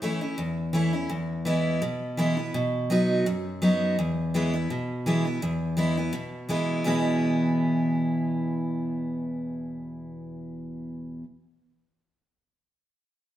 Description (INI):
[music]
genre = bluegrass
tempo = 167 BPM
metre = 4/4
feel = swing 54% on 8ths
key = E major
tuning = A4 = 440 Hz
[part]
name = picked steel-string acoustic guitar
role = solo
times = 0.0-11.2 s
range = E2 to F#4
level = -25 LUFS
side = equal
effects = none
[sound]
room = moderate stone room reverb, RT60 1.3 s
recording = band playing live in one room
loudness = -24 LUFS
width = side -12 dB against mid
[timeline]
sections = 0.0-5.4 A section; 5.4-6.8 B section; 6.8-9.7 C section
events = none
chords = 0.0 A; 1.1 E; 2.5 B; 4.0 E